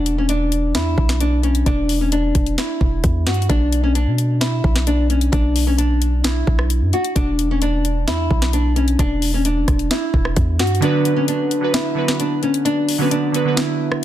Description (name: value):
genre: hip hop, trap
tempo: 131 BPM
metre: 4/4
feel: half-time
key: B minor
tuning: A4 = 439 Hz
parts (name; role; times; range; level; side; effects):
- nylon-string guitar; melody; 0.0-14.0 s; C#4 to F#4; -20 LUFS; left 1 dB; low-pass filter, ping-pong delay
- hard-hitting 808-style bass; bass; 0.0-10.8 s; E1 to B2; -19 LUFS; equal; none
- trap drum kit; drums; 0.1-14.0 s; hi-hat, kick drum, rim click, snare drum; -21 LUFS; equal; none
- glassy digital keys; accompaniment; 10.8-14.0 s; D3 to B4; -20 LUFS; right 5 dB; chorus, low-pass filter
room: light reverb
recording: dense, heavily limited modern master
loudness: -16 LUFS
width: side -12 dB against mid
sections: 0.0-14.0 A section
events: kick muted 10.8-14.0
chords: 0.0 E7(no3); 3.5 Bm; 7.2 E7(no3); 10.8 Bm